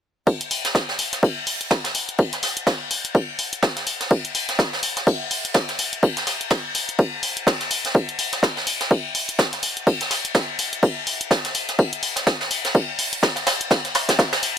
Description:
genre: piano house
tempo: 125 BPM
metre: 4/4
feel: swing 58% on 16ths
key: none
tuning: none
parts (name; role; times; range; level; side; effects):
- electronic kick drum; drums; 0.3-14.3 s; none; -18 LUFS; equal; overdrive, high-pass filter on kick
- jazz brush drum kit; drums; 0.3-14.6 s; hi-hat, ride cymbal, snare drum; -24 LUFS; left 1 dB; high-pass filter on cymbals, high-pass filter on hats, high-pass filter on snare, high-pass filter on room
- electronic hi-hat; drums; 0.4-14.5 s; none; -24 LUFS; left 2 dB; overdrive
room: little or no reverb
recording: none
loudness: -19 LUFS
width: side -9 dB against mid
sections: 0.3-14.6 A section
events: none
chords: none

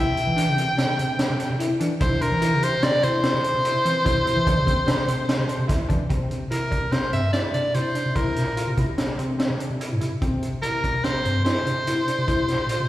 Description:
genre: progressive instrumental, band music in an uneven meter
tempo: 146 BPM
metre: 5/4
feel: straight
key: C mixolydian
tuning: A4 = 440 Hz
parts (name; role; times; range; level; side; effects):
- bright soprano saxophone; melody; 0.0-12.9 s; Bb4 to G5; -24 LUFS; equal; slapback echo, ping-pong delay
- tight sequenced synth; arpeggios; 0.0-12.8 s; C4 to G4; -29 LUFS; left 1 dB; chorus, phaser, slapback echo
- saturated sub bass; bass; 0.0-12.9 s; G2 to E3; -26 LUFS; equal; none
- raw garage drum kit; drums; 0.2-12.8 s; hi-hat, kick drum, snare drum; -26 LUFS; equal; none
room: moderate plate reverb, RT60 1.3 s, studio reverb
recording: live gig heard through the venue's PA, recital hall reverb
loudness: -20 LUFS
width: side -14 dB against mid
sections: 0.0-6.1 A section; 6.1-12.9 B section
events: none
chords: 0.0 C; 6.1 C7

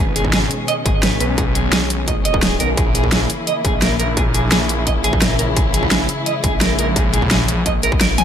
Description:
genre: dark technical drum and bass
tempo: 172 BPM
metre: 4/4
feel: straight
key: unclear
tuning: A4 = 440 Hz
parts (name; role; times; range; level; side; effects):
- dark studio string section; sustained chords; 0.0-8.2 s; B2 to E4; -24 LUFS; left 2 dB; sidechain pumping
- clean electric guitar; arpeggios; 0.0-8.2 s; G#4 to G#5; -22 LUFS; right 2 dB; tremolo, sidechain pumping, low-pass filter, digital delay
- phased detuned saw bass; bass; 0.0-8.2 s; G#1 to B1; -20 LUFS; equal; phaser
- dubstep drum kit; drums; 0.2-8.2 s; hi-hat, snare drum, toms; -19 LUFS; equal; none
- electronic kick drum; drums; 0.2-8.0 s; none; -20 LUFS; equal; distortion
room: light reverb, digital ambience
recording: none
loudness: -14 LUFS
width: side -9 dB against mid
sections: 0.0-8.2 A section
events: band accent 8.0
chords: 0.0 G#m; 2.8 A#dim

